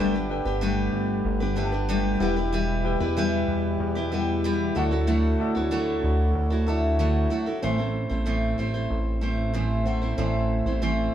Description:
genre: acoustic pop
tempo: 94 BPM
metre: 4/4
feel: straight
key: unclear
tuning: A4 = 444 Hz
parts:
  - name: picked steel-string acoustic guitar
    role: accompaniment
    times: 0.0-11.1 s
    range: A2 to C5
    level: -26 LUFS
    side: equal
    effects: none
  - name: warm upright piano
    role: accompaniment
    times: 0.0-11.1 s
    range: C4 to A5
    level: -32 LUFS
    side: left 2 dB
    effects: none
  - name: hand-pumped harmonium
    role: sustained chords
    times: 0.0-7.6 s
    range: B2 to G4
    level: -33 LUFS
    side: equal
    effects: none
  - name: chorused synth bass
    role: bass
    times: 0.0-11.1 s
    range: E1 to E2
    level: -26 LUFS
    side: equal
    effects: none
room: wet small room reverb, RT60 0.5 s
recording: band playing live in one room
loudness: -22 LUFS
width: side -10 dB against mid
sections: 0.0-7.6 A section; 7.6-11.1 B section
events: none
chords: 0.0 Gadd9; 2.2 Em; 4.8 Dadd9; 7.6 Am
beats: 0.61 1.25 1.89 | 2.53 3.16 3.80 4.44 | 5.08 5.71 6.35 6.99 | 7.62 8.26 8.90 9.54 | 10.18 10.81

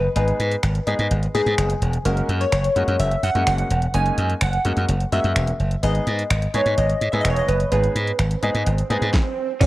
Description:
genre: dance-pop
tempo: 127 BPM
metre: 4/4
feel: straight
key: G# minor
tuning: A4 = 440 Hz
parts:
  - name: glassy wavetable pluck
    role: melody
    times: 0.0-8.6 s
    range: G#4 to G#5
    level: -23 LUFS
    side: equal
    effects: chorus
  - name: glassy slap bass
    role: bass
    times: 0.0-9.7 s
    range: E1 to G#2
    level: -21 LUFS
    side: equal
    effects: sidechain pumping
  - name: clear baby grand piano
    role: accompaniment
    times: 0.2-9.7 s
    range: G#3 to G#4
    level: -27 LUFS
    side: left 2 dB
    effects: sidechain pumping
  - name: smooth R&B drum kit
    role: drums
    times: 0.2-9.7 s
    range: crash cymbal, finger snaps, hi-hat, kick drum, snare drum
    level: -25 LUFS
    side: equal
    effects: none
  - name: swell and impact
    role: sound effects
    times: 8.3-9.7 s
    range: none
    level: -30 LUFS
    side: right 6 dB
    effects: none
  - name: string machine, cellos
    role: sustained chords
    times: 9.6-9.7 s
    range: none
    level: barely audible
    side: none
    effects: none
  - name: twelve-string electric guitar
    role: riff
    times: 9.6-9.7 s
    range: C#4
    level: -18 LUFS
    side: right 5 dB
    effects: lush chorus
room: light reverb, digital ambience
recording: worn, warbling old tape, cassette tape, warbly pitch drift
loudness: -18 LUFS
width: side -17 dB against mid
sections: 0.0-9.6 A section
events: swell 8.3-9.6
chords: 0.0 G#m; 2.0 F#add9; 5.8 G#m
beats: | 0.16 0.63 1.10 1.58 | 2.05 2.52 3.00 3.47 | 3.94 4.41 4.88 5.36 | 5.83 6.30 6.78 7.25 | 7.72 8.19 8.66 9.14 | 9.61

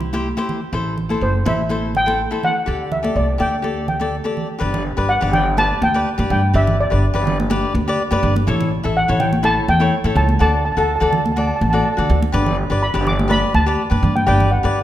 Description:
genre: calypso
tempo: 124 BPM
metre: 4/4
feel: swing 53% on 16ths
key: G major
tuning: A4 = 438 Hz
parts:
  - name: steel pan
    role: melody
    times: 0.0-14.8 s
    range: C5 to D6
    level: -20 LUFS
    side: equal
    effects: none
  - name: upright bass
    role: bass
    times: 0.0-14.8 s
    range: F#1 to D3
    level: -19 LUFS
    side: equal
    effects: none
  - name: congas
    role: percussion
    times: 0.0-14.5 s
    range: none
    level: -24 LUFS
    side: right 2 dB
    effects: none
  - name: cavaquinho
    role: accompaniment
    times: 0.1-14.8 s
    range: E4 to E5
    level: -22 LUFS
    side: left 2 dB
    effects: none
room: moderate concert hall reverb, RT60 1.8 s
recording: minimal, uncompressed stereo recording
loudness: -15 LUFS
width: side -12 dB against mid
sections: 0.0-4.6 A section; 4.6-14.8 B section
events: none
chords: 0.0 C; 0.7 Am; 2.7 Dsus4; 4.6 G; 8.5 A7; 10.4 D; 12.3 G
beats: 0.25 | 0.73 1.22 1.70 2.19 | 2.67 3.16 3.64 4.12 | 4.61 5.09 5.58 6.06 | 6.54 7.03 7.51 7.99 | 8.47 8.96 9.44 9.92 | 10.40 10.89 11.37 11.86 | 12.34 12.82 13.31 13.79 | 14.28 14.76

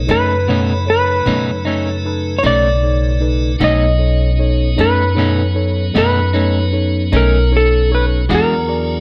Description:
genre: blues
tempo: 51 BPM (dotted quarters)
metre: 12/8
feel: straight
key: unclear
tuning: A4 = 436 Hz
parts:
  - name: clean lap steel guitar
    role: melody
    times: 0.0-9.0 s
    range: A4 to D#5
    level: -20 LUFS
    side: equal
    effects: none
  - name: tonewheel organ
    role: sustained chords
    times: 0.0-9.0 s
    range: C#3 to B4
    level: -27 LUFS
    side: equal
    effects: slow rotary speaker
  - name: upright bass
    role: bass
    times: 0.0-9.0 s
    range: B1 to F#2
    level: -18 LUFS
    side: equal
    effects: none
  - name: electric guitar at the edge of break-up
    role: accompaniment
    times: 0.1-8.5 s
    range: B2 to F#4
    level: -22 LUFS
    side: equal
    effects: tremolo
  - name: tine electric piano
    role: accompaniment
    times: 0.1-9.0 s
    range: D#4 to D#5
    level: -26 LUFS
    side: equal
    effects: phaser
room: light reverb, digital ambience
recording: faint mains hum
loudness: -15 LUFS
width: mono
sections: 0.0-9.0 A section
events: none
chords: 0.0 B9; 8.3 E9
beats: 0.08 1.26 2.43 | 3.60 4.78 5.95 7.13 | 8.30

